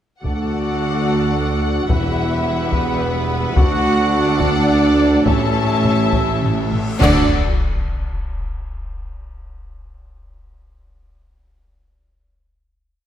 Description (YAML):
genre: cinematic, epic orchestral film score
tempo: 71 BPM (dotted quarters)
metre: 6/8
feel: straight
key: D major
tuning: A4 = 440 Hz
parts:
  - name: warm symphonic violin section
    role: melody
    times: 0.2-7.3 s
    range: F#5 to A5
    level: -27 LUFS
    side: left 5 dB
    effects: none
  - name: rich symphonic violin section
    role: second line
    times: 0.2-7.3 s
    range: B4 to F#5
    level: -27 LUFS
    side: left 3 dB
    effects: none
  - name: clear symphonic viola section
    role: accompaniment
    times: 0.2-7.3 s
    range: G4 to E5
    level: -28 LUFS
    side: left 1 dB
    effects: none
  - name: mellow French horn section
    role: sustained chords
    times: 0.2-7.2 s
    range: B3 to F#4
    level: -24 LUFS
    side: left 1 dB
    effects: none
  - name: rich studio string section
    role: sustained chords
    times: 0.2-7.3 s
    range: G3 to F#5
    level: -29 LUFS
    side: left 3 dB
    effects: none
  - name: mellow trumpet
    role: stabs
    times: 0.2-7.3 s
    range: B3 to D5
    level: -25 LUFS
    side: right 1 dB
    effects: none
  - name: mellow tuba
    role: bass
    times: 0.2-7.3 s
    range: E1 to D2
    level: -22 LUFS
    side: right 4 dB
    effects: none
  - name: rich symphonic cello section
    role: bass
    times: 0.2-7.3 s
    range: D2 to D3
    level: -23 LUFS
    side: right 1 dB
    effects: none
  - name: rich symphonic double bass section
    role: bass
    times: 0.2-7.3 s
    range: E1 to D2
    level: -23 LUFS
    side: right 2 dB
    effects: none
  - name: taiko ensemble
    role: drums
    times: 0.2-8.1 s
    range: none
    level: -20 LUFS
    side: left 1 dB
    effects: none
  - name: cymbal swell, clash cymbals and concert bass drum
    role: percussion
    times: 3.6-8.1 s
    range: none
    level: -24 LUFS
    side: left 1 dB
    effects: none
  - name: reverse cymbal and sub drop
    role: sound effects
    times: 6.8-8.8 s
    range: none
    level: -28 LUFS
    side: left 1 dB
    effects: none
room: wet scoring stage reverb, RT60 1.4 s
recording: none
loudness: -15 LUFS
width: side -10 dB against mid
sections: 0.2-7.0 theme; 7.0-8.8 final chord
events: reverse cymbal 6.8; band accent 7.0-7.6; impact 7.0-8.8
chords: 0.2 D; 1.9 Emadd9; 3.6 D; 5.3 A; 7.0 D